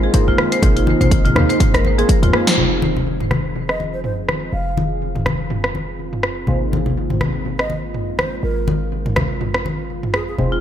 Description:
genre	afro house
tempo	123 BPM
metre	4/4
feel	swing 57% on 16ths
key	unclear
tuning	A4 = 440 Hz
part	warm analog pad	sustained chords	0.0-10.6 s	F3 to Ab4	-28 LUFS	right 2 dB	chorus, vintage 12-bit sampler grit, sidechain pumping
part	marimba with medium hard mallets	arpeggios	0.0-2.5, 10.5-10.6 s	F4 to C5	-23 LUFS	equal	sidechain pumping, dub echo
part	warm analog keys	stabs	0.0-10.6 s	Bb3 to C5	-25 LUFS	equal	chorus, vintage 12-bit sampler grit, sidechain pumping, low-pass filter, analog delay
part	warm 808-style bass	bass	0.0-10.6 s	F1 to Eb2	-23 LUFS	equal	tube saturation, sidechain pumping
part	electronic kick drum	drums	0.1-2.2 s	none	-16 LUFS	equal	studio reverb
part	house drum kit	drums	0.1-10.2 s	hi-hat, rim click, snare drum, toms	-21 LUFS	equal	low-pass filter on hats, studio reverb, low-pass filter on toms, low-pass filter on snare
part	congas	percussion	0.4-10.5 s	none	-23 LUFS	left 2 dB	analog delay
part	breathy bass bansuri	melody	3.7-10.3 s	Ab4 to F5	-29 LUFS	right 1 dB	dub echo
room	moderate plate reverb, RT60 2.0 s, digital ambience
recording	echo-heavy mix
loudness	-16 LUFS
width	side -10 dB against mid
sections	0.0-2.6 A section; 2.6-10.6 B section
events	filter sweep on marimba 0.0-2.6; drum fill 2.1-2.6; band accent 2.5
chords	0.0 Ab6; 2.6 Fm7; 6.5 Ab6

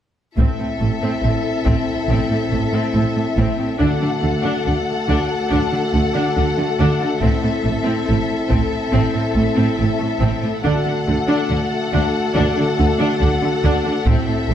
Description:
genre	cinematic, epic orchestral film score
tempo	70 BPM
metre	4/4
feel	straight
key	A dorian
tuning	A4 = 440 Hz
part	mellow French horn section	sustained chords	0.3-14.5 s	A3 to F#4	-23 LUFS	left 2 dB	none
part	warm symphonic violin section	melody	0.4-14.5 s	E5 to F#5	-27 LUFS	left 5 dB	none
part	clear symphonic violin section	second line	0.4-14.5 s	A4	-26 LUFS	left 6 dB	none
part	rich symphonic viola section	accompaniment	0.4-14.5 s	A3 to D4	-25 LUFS	equal	none
part	clear symphonic double bass section	bass	0.4-14.5 s	A1 to D2	-22 LUFS	right 2 dB	none
part	rich symphonic cello section	bass	0.4-14.5 s	A2 to D3	-23 LUFS	right 2 dB	none
part	taiko ensemble	drums	0.4-2.1, 7.2-8.9, 14.1-14.5 s	none	-22 LUFS	left 1 dB	none
room	moderate concert hall reverb, RT60 2.1 s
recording	none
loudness	-16 LUFS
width	side -10 dB against mid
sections	0.4-14.5 A section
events	build-up 0.4-14.5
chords	0.4 Am; 3.8 D; 7.2 Am; 10.7 D

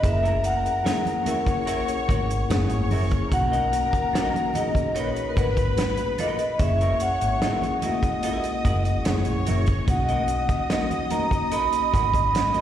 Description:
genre	lush 1970s-style soul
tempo	73 BPM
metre	4/4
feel	straight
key	B major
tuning	A4 = 440 Hz
part	vibraphone with medium hard mallets	melody	0.0-12.6 s	A#4 to B5	-25 LUFS	equal	slapback echo
part	clear studio string section	second line	0.0-12.6 s	A#4 to D#6	-32 LUFS	equal	slapback echo
part	mellow tine electric piano	accompaniment	0.0-12.6 s	A#2 to A#4	-30 LUFS	left 3 dB	medium stereo tremolo, slapback echo
part	electric guitar through a small old amp	riff	0.0-12.6 s	F#4 to F#5	-35 LUFS	right 4 dB	slapback echo
part	vintage muted fingered electric bass	bass	0.0-12.4 s	F#1 to B1	-25 LUFS	equal	none
part	warm soul drum kit	drums	0.0-12.6 s	hi-hat, kick drum, snare drum	-26 LUFS	equal	none
part	congas	percussion	0.2-12.6 s	none	-35 LUFS	right 4 dB	slapback echo
room	light reverb, small room ambience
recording	live gig heard through the venue's PA, recital hall reverb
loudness	-21 LUFS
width	side -10 dB against mid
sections	0.0-12.6 A section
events	none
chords	0.0 F#7; 3.3 Bmaj7; 6.6 F#7; 9.9 Bmaj7

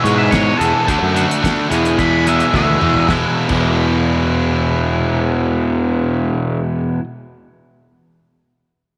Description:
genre	classic rock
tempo	108 BPM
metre	4/4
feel	straight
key	E mixolydian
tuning	A4 = 441 Hz
part	octave-fuzz lead guitar	melody	0.0-3.1 s	A4 to B5	-22 LUFS	equal	distortion, tape echo
part	cranked stack guitar	riff	0.0-7.0 s	E2 to G#4	-21 LUFS	equal	overdrive
part	crunchy overdriven guitar	riff	0.0-7.0 s	E2 to D4	-23 LUFS	equal	none
part	fuzz fingered electric bass	bass	0.0-6.6 s	E1 to G#2	-20 LUFS	equal	overdrive
part	damped 70s drum kit	drums	0.1-3.7 s	crash cymbal, hi-hat, kick drum, snare drum, toms	-26 LUFS	equal	none
room	moderate echo chamber reverb, RT60 2.3 s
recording	none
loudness	-16 LUFS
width	mono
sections	0.0-3.1 A section; 3.1-5.3 B section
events	lead electric guitar solo 0.0-3.1; drum fill 2.5-3.1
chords	0.0 E; 0.9 D; 1.7 E

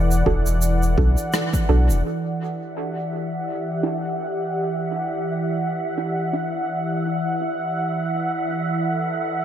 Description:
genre	ambient dub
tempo	84 BPM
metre	4/4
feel	swing 57% on 16ths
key	E minor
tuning	A4 = 440 Hz
part	warm analog pad	sustained chords	0.0-9.4 s	E3 to F#5	-24 LUFS	equal	chorus
part	soft dub sub bass	bass	0.0-2.0 s	E1 to B1	-18 LUFS	equal	none
part	shaker and rim click	drums	0.1-2.0 s	none	-28 LUFS	equal	dub echo
part	filtered dub chord stab	stabs	0.3-9.4 s	D4 to A4	-29 LUFS	right 4 dB	chorus, dub echo
part	electronic kick drum	drums	0.3-1.7 s	none	-24 LUFS	equal	none
part	wind-like tuned noise texture	texture	2.7-9.4 s	E5	-30 LUFS	right 4 dB	built-in reverb
room	moderate lush hall reverb, RT60 2.0 s, small room ambience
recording	none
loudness	-21 LUFS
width	side -10 dB against mid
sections	0.0-2.0 A section; 2.0-9.4 B section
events	band accent 1.3-1.7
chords	0.0 D/E; 2.0 Em7

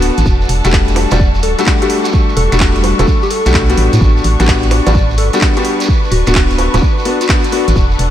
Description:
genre	UK garage, two-step garage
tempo	128 BPM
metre	4/4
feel	swing 66% on 16ths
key	E dorian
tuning	A4 = 440 Hz
part	soft struck synth lead	melody	0.0-7.8 s	F#4 to D5	-21 LUFS	left 2 dB	chorus, analog delay
part	ethereal airy pad	sustained chords	0.0-8.1 s	A5 to C#6	-25 LUFS	left 1 dB	ensemble chorus, built-in reverb, sidechain pumping
part	bright grand piano	stabs	0.0-7.6 s	G3 to F#4	-17 LUFS	left 3 dB	analog delay
part	organ-like FM bass	bass	0.0-8.1 s	D1 to A2	-13 LUFS	equal	tube saturation
part	garage drum kit	drums	0.0-8.1 s	bongos, finger snaps, handclaps, hi-hat	-20 LUFS	right 2 dB	none
part	muted chamber string section	texture	0.0-8.1 s	G3 to F#5	-23 LUFS	left 1 dB	sidechain pumping
part	shekere	percussion	0.2-8.0 s	none	-26 LUFS	right 4 dB	none
part	electronic kick drum	drums	0.3-7.9 s	none	-14 LUFS	equal	none
room	light reverb, digital ambience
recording	none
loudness	-10 LUFS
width	side -11 dB against mid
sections	0.0-8.1 A section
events	none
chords	0.3 Em11; 3.8 A13sus4; 5.9 D6

